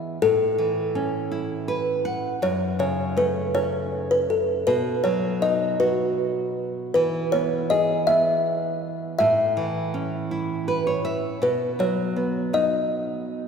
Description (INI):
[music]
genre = children's music, lullaby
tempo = 54 BPM (dotted quarters)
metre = 6/8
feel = rubato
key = unclear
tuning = A4 = 440 Hz
[part]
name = nylon-string guitar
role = accompaniment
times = 0.0-13.5 s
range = F#2 to F#5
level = -26 LUFS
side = right 1 dB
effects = none
[part]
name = kalimba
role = melody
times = 0.2-13.5 s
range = A4 to E5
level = -22 LUFS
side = left 1 dB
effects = none
[sound]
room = wet church reverb, RT60 3.4 s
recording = recorded in a church or concert hall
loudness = -21 LUFS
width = side -6 dB against mid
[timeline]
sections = 0.0-13.5 A section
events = nylon-string guitar fill 1.3-2.4, 10.3-11.4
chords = 0.2 A; 2.4 F#m; 4.7 B; 7.0 E; 9.2 A; 11.4 B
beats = | 0.22 1.32 | 2.42 3.55 | 4.68 5.80 | 6.95 8.09 | 9.20 10.31 | 11.42 12.54